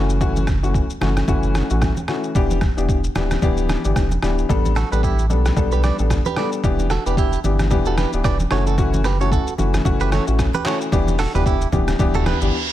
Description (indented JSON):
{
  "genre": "afrobeats",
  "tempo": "112 BPM",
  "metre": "4/4",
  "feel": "swing 58% on 16ths",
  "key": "E dorian",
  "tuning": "A4 = 440 Hz",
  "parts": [
    { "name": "clear baby grand piano", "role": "accompaniment", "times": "0.0-12.5 s", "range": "E3 to A4", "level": "-23 LUFS", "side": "left 4 dB", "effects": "none" },
    { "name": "warm sub bass", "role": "bass", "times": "0.0-12.5 s", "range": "D1 to B1", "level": "-20 LUFS", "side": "equal", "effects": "none" },
    { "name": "trip hop sampler-style drum kit", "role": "drums", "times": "0.1-12.5 s", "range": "handclaps, hi-hat, kick drum, rim click, shaker, toms", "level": "-22 LUFS", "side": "equal", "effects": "none" },
    { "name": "congas", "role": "percussion", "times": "0.2-12.4 s", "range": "none", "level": "-28 LUFS", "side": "right 3 dB", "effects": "none" },
    { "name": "direct-recorded clean electric guitar", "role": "riff", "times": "4.8-12.4 s", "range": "E4 to D5", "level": "-26 LUFS", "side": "right 8 dB", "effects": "tape echo" },
    { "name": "reverse cymbal", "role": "sound effects", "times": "12.2-12.7 s", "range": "none", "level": "-25 LUFS", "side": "right 5 dB", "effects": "none" }
  ],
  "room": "digital ambience",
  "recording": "none",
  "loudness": "-17 LUFS",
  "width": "side -13 dB against mid",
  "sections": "0.0-4.5 A section; 4.5-12.7 B section",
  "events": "reverse cymbal 12.2-12.7; break 12.5",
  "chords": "0.0 F#m7; 2.4 Em7; 4.5 A9sus4; 6.6 Em7; 8.5 F#m7; 10.9 Em7"
}